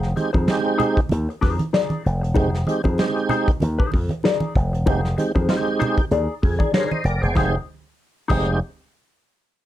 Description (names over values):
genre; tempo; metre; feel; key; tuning
funk; 96 BPM; 4/4; swing 56% on 16ths; F dorian; A4 = 440 Hz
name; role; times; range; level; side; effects
mellow electric guitar; accompaniment; 0.0-8.5 s; Eb4 to D5; -25 LUFS; left 6 dB; wah
slap bass with an envelope filter; bass; 0.0-8.6 s; E1 to F2; -21 LUFS; equal; none
soft brush drum kit; drums; 0.0-8.5 s; crash cymbal, hi-hat, kick drum, snare drum; -22 LUFS; equal; none
tonewheel organ; stabs; 0.2-8.6 s; Ab3 to Eb5; -22 LUFS; right 3 dB; overdrive, chorus vibrato, slow rotary speaker
congas; percussion; 0.2-8.6 s; none; -27 LUFS; right 2 dB; none
room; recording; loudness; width
little or no reverb; dark, warm production; -18 LUFS; side -13 dB against mid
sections
0.0-7.4 A section; 7.4-9.7 B section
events
tonewheel organ fill 6.1-7.4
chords
0.0 Fm7